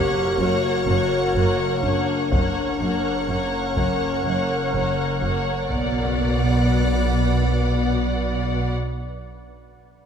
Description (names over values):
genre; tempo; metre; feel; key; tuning
cinematic, suspense film score; 62 BPM; 4/4; straight; unclear; A4 = 436 Hz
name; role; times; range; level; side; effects
rich studio violin section; melody; 0.0-8.7 s; F#5; -32 LUFS; left 2 dB; none
warm clarinet; second line; 0.0-8.7 s; B3 to G4; -27 LUFS; left 4 dB; none
warm studio violin section; second line; 0.0-8.7 s; C#5 to D5; -30 LUFS; left 2 dB; none
clear studio viola section; accompaniment; 0.0-8.7 s; A#3 to B3; -30 LUFS; right 1 dB; none
soft additive organ-like pad; sustained chords; 0.0-8.7 s; A#4 to F#5; -27 LUFS; equal; ensemble chorus, built-in reverb
bowed-like drone; drone; 0.0-8.7 s; F#1 to B1; -30 LUFS; left 1 dB; built-in reverb
clear studio cello section; bass; 0.4-8.7 s; F#2 to B2; -28 LUFS; right 1 dB; none
rich studio double bass section; bass; 0.4-8.7 s; F#1 to B1; -25 LUFS; right 2 dB; none
solo taiko drums; drums; 2.3-7.6 s; none; -26 LUFS; left 1 dB; none
room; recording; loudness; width
moderate scoring stage reverb, RT60 2.0 s; minimal, uncompressed stereo recording; -19 LUFS; side -7 dB against mid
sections
0.0-6.2 A section; 6.2-10.1 B section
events
none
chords
0.0 F#; 5.7 Bm